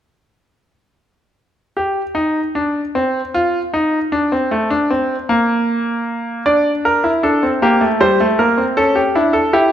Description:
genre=classical, baroque-style 3-part fugue for grand piano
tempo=52 BPM (dotted quarters)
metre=6/8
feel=straight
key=G minor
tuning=A4 = 440 Hz
part: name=bright grand piano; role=solo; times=1.8-9.7 s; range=G3 to D5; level=-14 LUFS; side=equal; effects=none
room=moderate recital hall reverb, RT60 1.7 s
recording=none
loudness=-14 LUFS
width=side -10 dB against mid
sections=1.8-9.7 A section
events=none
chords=1.8 N.C.; 6.5 D5; 7.6 Gmadd11; 8.8 A7/C#

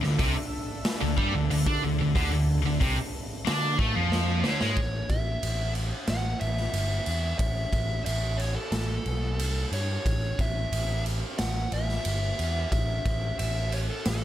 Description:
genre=hard rock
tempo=91 BPM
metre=4/4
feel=straight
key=A mixolydian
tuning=A4 = 440 Hz
part: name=lush unison pad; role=sustained chords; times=0.0-4.7 s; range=D4 to E5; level=-39 LUFS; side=equal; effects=chorus
part: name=high-gain distorted guitar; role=riff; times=0.0-4.8 s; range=C3 to D4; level=-30 LUFS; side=left 9 dB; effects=distortion
part: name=tight distorted guitar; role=riff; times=0.0-4.8 s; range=C3 to D4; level=-30 LUFS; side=right 10 dB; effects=distortion
part: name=overdriven picked electric bass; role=bass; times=0.0-14.2 s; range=G1 to D3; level=-29 LUFS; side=equal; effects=none
part: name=raw garage drum kit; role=drums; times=0.0-14.2 s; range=hi-hat, kick drum, ride cymbal, snare drum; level=-30 LUFS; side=equal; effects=none
part: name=dark smooth lead guitar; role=melody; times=4.4-14.2 s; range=A4 to F#5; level=-33 LUFS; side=equal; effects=overdrive
room=small room ambience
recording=none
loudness=-25 LUFS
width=side -12 dB against mid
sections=0.0-4.8 A section; 4.8-14.2 B section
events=drum fill 4.1-4.8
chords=0.0 D5; 4.8 A5; 9.4 C5; 10.1 A5

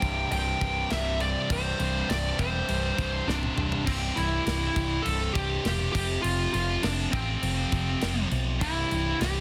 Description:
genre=hard rock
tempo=101 BPM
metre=4/4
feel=straight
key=C major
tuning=A4 = 439 Hz
part: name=smooth overdriven lead guitar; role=melody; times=0.0-9.4 s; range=C4 to G5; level=-32 LUFS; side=equal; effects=digital delay
part: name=cranked stack guitar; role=riff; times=0.0-3.9 s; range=C2 to C3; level=-37 LUFS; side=equal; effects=overdrive
part: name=distorted electric guitar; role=riff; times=0.0-9.4 s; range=C2 to F3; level=-37 LUFS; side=equal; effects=overdrive
part: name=scooped high-gain guitar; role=riff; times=0.0-9.4 s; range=C2 to F3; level=-38 LUFS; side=equal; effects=none
part: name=hollow-body short-scale fingered electric bass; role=bass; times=0.0-9.4 s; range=C1 to B1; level=-32 LUFS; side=equal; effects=none
part: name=tight metal drum kit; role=drums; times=0.0-9.3 s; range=crash cymbal, kick drum, snare drum, toms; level=-36 LUFS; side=equal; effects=soft clipping on kick
room=light reverb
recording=dense, heavily limited modern master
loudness=-27 LUFS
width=mono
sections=0.0-3.9 A section; 3.9-9.4 A section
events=drum fill 3.3-3.9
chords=0.0 C5; 3.9 C; 5.9 F5; 8.6 C

